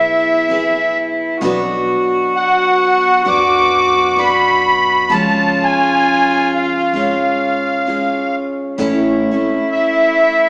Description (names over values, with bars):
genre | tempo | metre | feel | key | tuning
acoustic folk duo or small band | 65 BPM | 4/4 | swing 58% on 8ths | unclear | A4 = 438 Hz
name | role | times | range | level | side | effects
musette accordion | melody | 0.0-10.5 s | E5 to D6 | -17 LUFS | equal | slapback echo
rich cello | second line | 0.0-10.5 s | E4 to F#4 | -19 LUFS | equal | none
picked steel-string acoustic guitar | accompaniment | 0.0-10.5 s | A2 to C#5 | -22 LUFS | equal | none
upright bass | bass | 0.0-9.3 s | G#1 to F#2 | -34 LUFS | equal | none
room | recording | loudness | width
wet large studio reverb, RT60 1.3 s | heard from further back in the room, small speaker sound | -15 LUFS | mono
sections
0.0-10.5 A section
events
none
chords
0.0 E; 1.4 Bm; 5.1 C#; 8.8 A